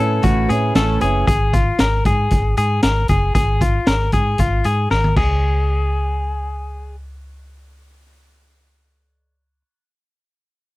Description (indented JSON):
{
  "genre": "jangly indie pop",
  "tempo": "116 BPM",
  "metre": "4/4",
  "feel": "straight",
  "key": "unclear",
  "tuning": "A4 = 438 Hz",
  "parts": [
    { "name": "picked steel-string acoustic guitar", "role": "accompaniment", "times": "0.0-1.3 s", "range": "A3 to B4", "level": "-21 LUFS", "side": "right 5 dB", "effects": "none" },
    { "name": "direct-recorded clean electric guitar", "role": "arpeggios", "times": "0.0-6.9 s", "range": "F4 to Bb4", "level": "-20 LUFS", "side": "left 3 dB", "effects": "none" },
    { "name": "vintage muted fingered electric bass", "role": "bass", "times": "0.0-9.6 s", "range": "Gb1 to A2", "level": "-19 LUFS", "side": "equal", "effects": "none" },
    { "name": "raw garage drum kit", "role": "drums", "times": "0.2-5.3 s", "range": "crash cymbal, hi-hat, kick drum, snare drum, toms", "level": "-19 LUFS", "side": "equal", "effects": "none" }
  ],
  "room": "little or no reverb",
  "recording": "dry, close 1970s-style studio recording",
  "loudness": "-15 LUFS",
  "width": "side -19 dB against mid",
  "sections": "0.0-5.4 A section; 5.4-9.6 B section",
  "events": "drum fill 4.9-5.4",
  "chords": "0.0 Aadd9; 1.3 Gbmaj9 (rootless); 5.2 Db5"
}